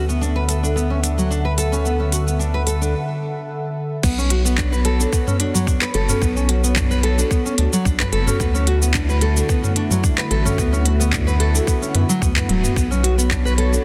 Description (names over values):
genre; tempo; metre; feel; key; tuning
organic downtempo; 110 BPM; 4/4; swing 53% on 16ths; B minor; A4 = 440 Hz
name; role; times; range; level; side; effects
warm analog pad; sustained chords; 0.0-13.8 s; D3 to F#5; -28 LUFS; equal; chorus, sidechain pumping
nylon-string guitar; arpeggios; 0.0-13.8 s; F#3 to B4; -25 LUFS; equal; digital delay
round analog bass; bass; 0.0-13.8 s; D1 to F#2; -22 LUFS; equal; sidechain pumping
organic electronic drum kit; drums; 0.1-13.8 s; crash cymbal, handclaps, hi-hat, shaker, toms; -26 LUFS; equal; none
electronic kick drum; drums; 4.0-13.4 s; none; -23 LUFS; equal; none
room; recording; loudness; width
light reverb, digital ambience; dense, heavily limited modern master; -19 LUFS; mono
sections
0.0-4.0 A section; 4.0-13.8 B section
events
break 2.9-4.0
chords
0.0 D; 4.0 Bm7; 8.4 Dmaj7; 12.8 Bm7